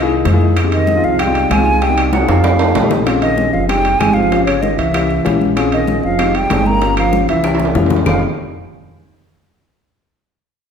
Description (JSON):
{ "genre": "Afro-Cuban jazz", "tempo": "192 BPM", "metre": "4/4", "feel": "straight", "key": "F minor", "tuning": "A4 = 444 Hz", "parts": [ { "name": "mellow hollow silver concert flute", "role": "melody", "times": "0.0-8.2 s", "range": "Db5 to Bb5", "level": "-18 LUFS", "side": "equal", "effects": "none" }, { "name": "dark trombone", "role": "second line", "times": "0.0-8.2 s", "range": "Db3 to Bb3", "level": "-20 LUFS", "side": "right 2 dB", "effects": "none" }, { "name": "dark baby grand piano", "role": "accompaniment", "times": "0.0-8.2 s", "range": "Ab3 to G#4", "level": "-18 LUFS", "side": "left 4 dB", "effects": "none" }, { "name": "upright bass", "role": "bass", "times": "0.0-8.2 s", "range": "F1 to F2", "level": "-19 LUFS", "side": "equal", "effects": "none" }, { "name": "bongos", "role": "percussion", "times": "0.1-8.1 s", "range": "none", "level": "-24 LUFS", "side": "left 5 dB", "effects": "none" }, { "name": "congas", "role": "percussion", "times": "0.1-8.1 s", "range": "none", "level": "-24 LUFS", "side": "equal", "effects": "none" }, { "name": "timbales", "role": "percussion", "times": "0.3-8.1 s", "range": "none", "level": "-22 LUFS", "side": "right 4 dB", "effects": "none" }, { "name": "claves", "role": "percussion", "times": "0.6-8.1 s", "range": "none", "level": "-31 LUFS", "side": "left 5 dB", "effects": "none" } ], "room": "wet large studio reverb, RT60 1.3 s", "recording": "band playing live in one room", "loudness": "-12 LUFS", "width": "side -7 dB against mid", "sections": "0.0-3.1 A section; 3.1-8.1 B section; 8.1-9.3 C section", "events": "drum fill 2.1-3.1, 7.4-8.1", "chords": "0.0 C7alt; 0.6 Fm9; 1.8 Cm7b5; 2.4 F7; 3.1 Bbm7; 3.7 Fm9; 4.3 Gm7b5; 4.9 C7b9; 5.6 Bbm7; 6.2 Fm9; 6.8 Gm7b5; 7.4 C7b9; 8.1 Fm9" }